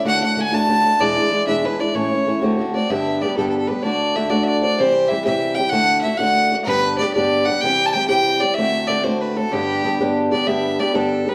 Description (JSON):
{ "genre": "celtic folk, Celtic jig", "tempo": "127 BPM (dotted quarters)", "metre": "6/8", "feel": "straight", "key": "G major", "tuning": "A4 = 440 Hz", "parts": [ { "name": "warm fiddle", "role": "melody", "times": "0.0-11.3 s", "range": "G4 to A5", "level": "-21 LUFS", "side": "equal", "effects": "none" }, { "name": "fingerpicked old ladder-braced acoustic guitar", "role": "accompaniment", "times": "0.0-11.3 s", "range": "E2 to G4", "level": "-22 LUFS", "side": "equal", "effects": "none" } ], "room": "wet large studio reverb, RT60 1.1 s", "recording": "band playing live in one room", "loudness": "-19 LUFS", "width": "mono", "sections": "0.0-2.9 A section; 2.9-10.5 B section", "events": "none", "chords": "0.1 D; 1.0 E7; 1.9 A; 2.4 D7; 2.9 G; 3.8 D; 4.8 C; 5.7 D; 6.7 G; 7.6 C; 8.6 D7; 9.5 G", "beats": "| 0.05 0.52 | 1.00 1.47 | 1.95 2.42 | 2.89 3.37 | 3.84 4.31 | 4.79 5.26 | 5.74 6.21 | 6.68 7.16 | 7.63 8.11 | 8.58 9.05 | 9.53 10.00 | 10.48 10.95" }